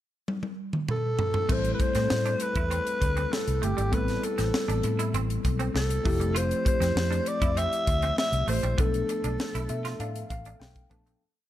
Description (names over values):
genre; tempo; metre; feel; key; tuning
polished 1980s jazz-funk pop; 99 BPM; 4/4; straight; A minor; A4 = 440 Hz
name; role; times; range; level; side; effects
crisp fusion drum kit; drums; 0.3-11.2 s; crash cymbal, hi-hat, kick drum, snare drum, toms; -30 LUFS; equal; none
breathy alto saxophone; melody; 0.9-10.6 s; G4 to E5; -29 LUFS; equal; none
overdriven tine electric piano; accompaniment; 1.5-11.2 s; F3 to A5; -32 LUFS; left 4 dB; analog chorus
semi-hollow electric guitar; riff; 1.5-11.2 s; G3 to F4; -37 LUFS; right 7 dB; ensemble chorus
vintage muted fingered electric bass; bass; 1.5-11.1 s; F1 to B2; -29 LUFS; equal; none
room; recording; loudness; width
light reverb; none; -24 LUFS; side -13 dB against mid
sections
0.0-1.5 pickup bar; 1.5-11.2 verse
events
drum fill 0.3-1.5; fade-out 8.8-11.2; tine electric piano fill 9.4-11.2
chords
0.0 N.C.; 1.5 Am9; 6.1 Fmaj9; 8.8 Bm7b5